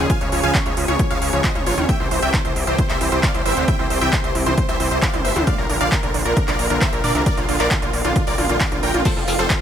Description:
uplifting trance; 134 BPM; 4/4; straight; A4 = 441 Hz
big supersaw lead; melody; 0.0-9.6 s; F4 to Ab5; -22 LUFS; equal; sidechain pumping, dub echo
lush unison pad; sustained chords; 0.0-9.6 s; C3 to Ab4; -26 LUFS; equal; chorus, sidechain pumping
analog pluck; arpeggios; 0.0-9.4 s; D3 to F3; -29 LUFS; right 4 dB; chorus, sidechain pumping, dub echo
gritty driven synth bass; bass; 0.0-9.5 s; F1 to Bb2; -23 LUFS; equal; sidechain pumping
big-room dance drum kit; drums; 0.1-9.6 s; crash cymbal, handclaps, hi-hat, ride cymbal, toms; -25 LUFS; equal; overdrive
electronic kick drum; drums; 0.1-9.6 s; -22 LUFS; equal; overdrive
shekere; percussion; 9.1-9.6 s; -29 LUFS; left 5 dB
digital ambience; -16 LUFS; side -9 dB against mid
0.0-9.6 A section
0.0 Db; 1.9 C; 5.5 Bb; 9.1 F

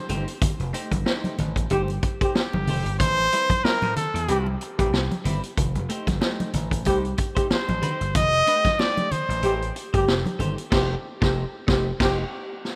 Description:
funk; 93 BPM; 4/4; swing 56% on 16ths; A4 = 440 Hz
bright trumpet; melody; 0.0-9.8 s; G4 to Eb5; -26 LUFS; equal
clean electric guitar; accompaniment; 0.1-12.2 s; G3 to C5; -37 LUFS; equal; phaser
vintage slap bass; bass; 0.1-12.2 s; F1 to A2; -30 LUFS; equal
vintage drum kit; drums; 0.1-12.8 s; crash cymbal, hi-hat, kick drum, snare drum; -28 LUFS; equal
congas; percussion; 0.1-10.6 s; -32 LUFS; equal
breathy trombone; second line; 1.7-12.2 s; G4; -30 LUFS; equal
moderate plate reverb, RT60 3.3 s; rough home demo mix; -24 LUFS; mono
0.0-12.8 A section
band accent 10.7-12.8
0.0 F9 (rootless); 3.0 Am9; 5.6 F9

